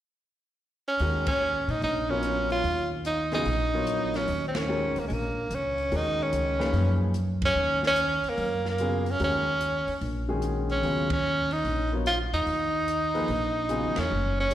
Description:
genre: modal jazz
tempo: 146 BPM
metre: 4/4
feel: swing 67% on 8ths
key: Eb minor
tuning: A4 = 440 Hz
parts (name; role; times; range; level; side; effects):
- clear tenor saxophone; melody; 0.9-14.5 s; Ab3 to F4; -26 LUFS; right 1 dB; slapback echo
- warm concert grand piano; accompaniment; 1.0-14.5 s; Bb2 to Db5; -31 LUFS; left 2 dB; slapback echo
- upright bass; bass; 1.0-14.5 s; Gb1 to Bb2; -30 LUFS; equal; none
- open jazz drum kit; drums; 1.0-14.5 s; hi-hat, kick drum, ride cymbal, snare drum; -37 LUFS; equal; none
room: light reverb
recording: live gig heard through the venue's PA, recital hall reverb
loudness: -24 LUFS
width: side -12 dB against mid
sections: 1.0-14.5 A section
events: band accent 1.2, 4.5, 7.4, 11.0, 13.9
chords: 0.0 N.C.; 1.0 Ebm9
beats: 0.17 0.58 | 0.99 1.41 1.82 2.23 | 2.64 3.05 3.46 3.87 | 4.28 4.69 5.10 5.51 | 5.92 6.33 6.74 7.15 | 7.56 7.97 8.38 8.79 | 9.20 9.61 10.02 10.43 | 10.83 11.24 11.65 12.06 | 12.47 12.88 13.29 13.69 | 14.10 14.51

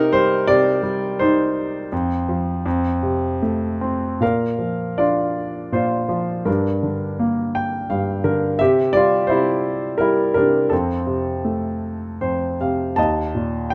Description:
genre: classical, lyrical solo piano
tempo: 75-87 BPM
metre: 3/4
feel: rubato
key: Bb major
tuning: A4 = 440 Hz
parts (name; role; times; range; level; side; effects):
- warm concert grand piano; solo; 0.0-13.7 s; Eb2 to A5; -20 LUFS; equal; none
room: light reverb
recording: none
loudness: -20 LUFS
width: mono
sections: 0.0-4.2 A section; 4.2-13.7 B section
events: grand piano fill 7.2-8.6, 11.8-13.0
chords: 0.0 Cm; 1.9 Cmadd11/F; 2.7 F; 4.2 Bb; 6.5 Gm; 8.6 C; 10.7 F; 13.0 Eb5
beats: 0.48 1.19 | 1.92 2.66 3.44 | 4.22 4.98 5.73 | 6.47 7.20 7.90 | 8.60 9.30 10.00 | 10.72 11.45 12.22 | 12.98 13.72

